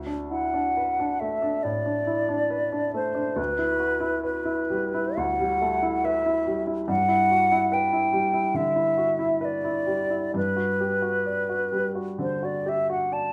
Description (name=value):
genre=classical, impressionist duo for flute and grand piano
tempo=62-73 BPM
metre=4/4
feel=rubato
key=unclear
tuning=A4 = 436 Hz
part: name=clear baby grand piano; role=accompaniment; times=0.0-13.3 s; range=D2 to D5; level=-30 LUFS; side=equal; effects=none
part: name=hollow concert flute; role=melody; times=0.3-13.3 s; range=B4 to A5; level=-26 LUFS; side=equal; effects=none
room=moderate large studio reverb, RT60 0.8 s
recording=none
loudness=-25 LUFS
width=mono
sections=0.0-13.3 A section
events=none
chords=0.0 D6; 3.4 Em9/D; 6.9 G6; 10.4 Gmaj7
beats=0.77 1.64 2.51 | 3.38 4.26 5.18 6.05 | 6.90 7.74 8.56 9.44 | 10.36 11.28 12.21 13.14